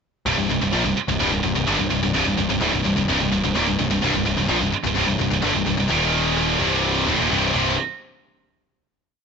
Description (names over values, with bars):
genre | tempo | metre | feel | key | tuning
heavy metal | 128 BPM | 4/4 | straight | C minor | A4 = 441 Hz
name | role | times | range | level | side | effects
heavy high-gain guitar | riff | 0.3-7.7 s | C2 to F3 | -22 LUFS | right 11 dB | distortion
raw garage guitar | riff | 0.3-7.7 s | C2 to F3 | -27 LUFS | right 1 dB | overdrive
scooped high-gain guitar | riff | 0.3-7.7 s | C2 to F3 | -23 LUFS | left 12 dB | distortion
fuzz picked electric bass | bass | 0.3-7.8 s | C1 to Bb1 | -26 LUFS | equal | overdrive
cajon | drums | 0.3-7.6 s | none | -32 LUFS | equal | none
room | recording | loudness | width
digital ambience | blown-out, overdriven recording, overdrive, nothing above 7.8 kHz | -18 LUFS | side -6 dB against mid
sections
0.3-7.8 riff; 7.8-9.2 final hit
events
kick and snare drop out 6.8-7.8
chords
0.3 C5; 5.9 Eb5; 6.6 Cm; 7.5 C5; 7.8 N.C.